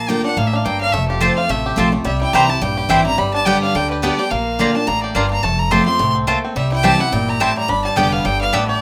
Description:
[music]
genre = bluegrass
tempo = 213 BPM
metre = 4/4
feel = swing 56% on 8ths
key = C mixolydian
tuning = A4 = 438 Hz
[part]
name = bluegrass banjo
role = melody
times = 0.0-8.8 s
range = G3 to G4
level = -26 LUFS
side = equal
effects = none
[part]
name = rich fiddle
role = melody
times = 0.0-8.8 s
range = G4 to C6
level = -22 LUFS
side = equal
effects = none
[part]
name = picked steel-string acoustic guitar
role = accompaniment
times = 0.0-8.8 s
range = F2 to G4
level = -23 LUFS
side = equal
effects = none
[part]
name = upright bass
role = bass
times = 0.0-8.8 s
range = F1 to D2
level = -27 LUFS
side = equal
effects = none
[part]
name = mandolin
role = stabs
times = 1.2-8.6 s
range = Bb3 to Bb5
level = -20 LUFS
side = equal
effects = none
[sound]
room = wet studio ambience, RT60 0.5 s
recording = rough home demo mix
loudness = -17 LUFS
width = mono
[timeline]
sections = 0.0-8.8 A section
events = fiddle solo 0.0-8.8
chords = 0.0 Bb; 0.9 F; 2.1 C; 3.2 G; 4.3 Bb; 5.4 F; 6.6 C; 7.7 G

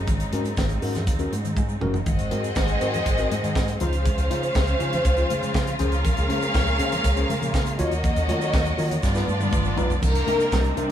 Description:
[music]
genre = disco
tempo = 121 BPM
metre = 4/4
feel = straight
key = unclear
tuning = A4 = 439 Hz
[part]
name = clear studio string section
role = sustained chords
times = 0.0-10.9 s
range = Db3 to C5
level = -30 LUFS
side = right 1 dB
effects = none
[part]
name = picked electric bass with an envelope filter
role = bass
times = 0.0-10.9 s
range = Gb1 to Eb3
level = -26 LUFS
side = equal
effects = none
[part]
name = mellow tine electric piano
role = accompaniment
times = 0.1-10.9 s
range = G2 to Db5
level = -30 LUFS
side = left 2 dB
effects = medium stereo tremolo
[part]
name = tight funk drum kit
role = drums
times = 0.1-10.9 s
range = crash cymbal, hi-hat, kick drum, snare drum, toms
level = -26 LUFS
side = equal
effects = none
[part]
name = congas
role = percussion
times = 0.1-10.9 s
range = none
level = -34 LUFS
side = left 2 dB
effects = none
[part]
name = egg shaker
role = percussion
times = 0.1-10.8 s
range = none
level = -44 LUFS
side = right 7 dB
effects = none
[part]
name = warm studio violin section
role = second line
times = 2.1-10.7 s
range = Bb3 to F5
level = -26 LUFS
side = left 1 dB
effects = none
[sound]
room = moderate studio reverb, RT60 0.7 s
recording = band playing live in one room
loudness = -20 LUFS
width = side -10 dB against mid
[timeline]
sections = 0.0-2.1 A section; 2.1-10.0 B section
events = drum fill 1.6-2.1, 9.0-10.0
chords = 0.0 Ab9sus4; 2.1 Ab7; 3.8 Dbmaj7; 5.8 Bbm7/Db; 7.8 Ebm7; 9.0 G7b13; 10.0 Cm9

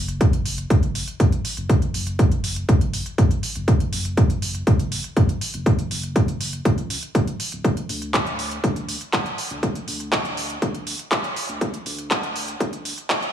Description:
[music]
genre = melodic techno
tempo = 121 BPM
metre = 4/4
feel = straight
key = unclear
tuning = A4 = 439 Hz
[part]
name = round analog bass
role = bass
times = 0.0-13.2 s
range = D1 to F#2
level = -31 LUFS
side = equal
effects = sidechain pumping
[part]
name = techno drum kit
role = drums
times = 0.1-13.3 s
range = handclaps, hi-hat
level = -26 LUFS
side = right 1 dB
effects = sidechain pumping on hats
[part]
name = electronic kick drum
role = drums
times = 0.2-13.2 s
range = none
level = -19 LUFS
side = equal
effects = none
[sound]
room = light reverb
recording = high-pass filter, small room ambience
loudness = -20 LUFS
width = side -10 dB against mid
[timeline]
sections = 0.0-13.3 A section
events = build-up 0.0-13.3; filter sweep 0.0-13.3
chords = none

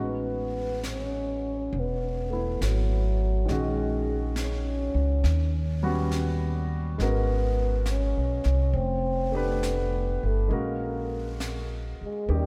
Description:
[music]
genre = jazz ballad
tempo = 68 BPM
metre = 4/4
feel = swing 68% on 8ths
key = unclear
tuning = A4 = 440 Hz
[part]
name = trombone with cup mute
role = melody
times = 0.0-12.5 s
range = E#3 to C#4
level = -34 LUFS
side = equal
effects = analog delay
[part]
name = warm grand piano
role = accompaniment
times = 0.0-12.5 s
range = D#3 to B4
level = -35 LUFS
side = equal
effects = none
[part]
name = upright bass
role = bass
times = 0.0-12.5 s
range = E1 to D#2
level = -29 LUFS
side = equal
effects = none
[part]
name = jazz brush drum kit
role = drums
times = 0.8-12.5 s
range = brushed snare drum, hi-hat, snare drum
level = -44 LUFS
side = equal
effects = none
[sound]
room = light reverb, studio reverb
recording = none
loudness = -27 LUFS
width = mono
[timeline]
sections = 0.0-12.5 A section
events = none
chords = 0.0 A69; 3.5 F#69/A#; 5.2 D#7alt; 7.0 G#m9; 8.7 F; 10.5 F#add9/A#

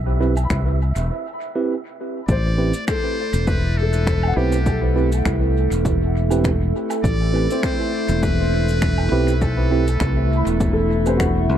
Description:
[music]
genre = ambient dub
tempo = 101 BPM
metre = 4/4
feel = swing 54% on 16ths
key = A dorian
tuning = A4 = 440 Hz
[part]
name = felt-muted upright piano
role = arpeggios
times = 0.0-11.6 s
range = C4 to B5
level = -29 LUFS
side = left 5 dB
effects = tape echo
[part]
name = modern bright fingered electric bass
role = bass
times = 0.0-11.6 s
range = E1 to C2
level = -19 LUFS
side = equal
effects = none
[part]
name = wind-like tuned noise texture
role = texture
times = 0.0-1.1 s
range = E5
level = -33 LUFS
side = right 5 dB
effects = built-in reverb
[part]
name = tine electric piano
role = stabs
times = 0.2-11.2 s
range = C4 to B4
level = -26 LUFS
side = right 4 dB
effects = dub echo
[part]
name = woodblock, shaker and finger snaps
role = drums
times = 0.4-11.3 s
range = none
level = -34 LUFS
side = right 1 dB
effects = dub echo
[part]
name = electronic kick drum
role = drums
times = 0.5-11.3 s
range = none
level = -24 LUFS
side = equal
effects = overdrive
[part]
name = trumpet with metal mute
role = melody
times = 2.3-10.6 s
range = G4 to D5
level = -30 LUFS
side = equal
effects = dub echo
[part]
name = warbly tape-like pad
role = sustained chords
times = 2.3-11.6 s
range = A3 to E5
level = -24 LUFS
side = right 1 dB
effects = chorus, built-in reverb
[sound]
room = small room ambience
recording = echo-heavy mix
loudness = -17 LUFS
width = side -10 dB against mid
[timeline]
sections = 0.0-2.3 A section; 2.3-11.6 B section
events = break 1.1-2.3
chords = 0.0 Am7

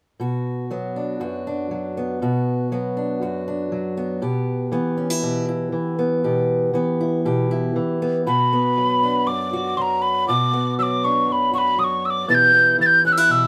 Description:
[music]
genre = folk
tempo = 119 BPM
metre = 4/4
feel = straight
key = B minor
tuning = A4 = 440 Hz
[part]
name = fingerpicked acoustic archtop guitar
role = accompaniment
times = 0.2-13.5 s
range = F#2 to G4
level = -24 LUFS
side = equal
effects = none
[part]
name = breathy mellow mid whistle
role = melody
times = 8.3-13.5 s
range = A#5 to A6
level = -19 LUFS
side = equal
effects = none
[sound]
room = moderate studio reverb, RT60 0.5 s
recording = band playing live in one room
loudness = -21 LUFS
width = mono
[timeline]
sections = 0.2-8.3 A section; 8.3-13.5 B section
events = none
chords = 0.2 Bm; 4.2 Em/B; 8.3 Bm; 12.3 Em/B

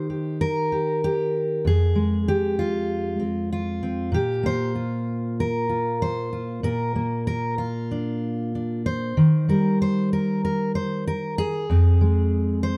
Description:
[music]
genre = folk, solo fingerstyle acoustic guitar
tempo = 96 BPM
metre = 4/4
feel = straight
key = Bb mixolydian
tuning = A4 = 441 Hz
[part]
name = fingerpicked steel-string acoustic guitar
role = solo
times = 0.0-12.8 s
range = F2 to C5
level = -24 LUFS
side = equal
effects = none
[sound]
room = little or no reverb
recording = close, detailed microphones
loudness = -24 LUFS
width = mono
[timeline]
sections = 0.0-12.8 A section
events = none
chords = 0.0 Eb; 1.6 Fm; 4.1 Bb; 9.2 Eb; 11.7 Fm

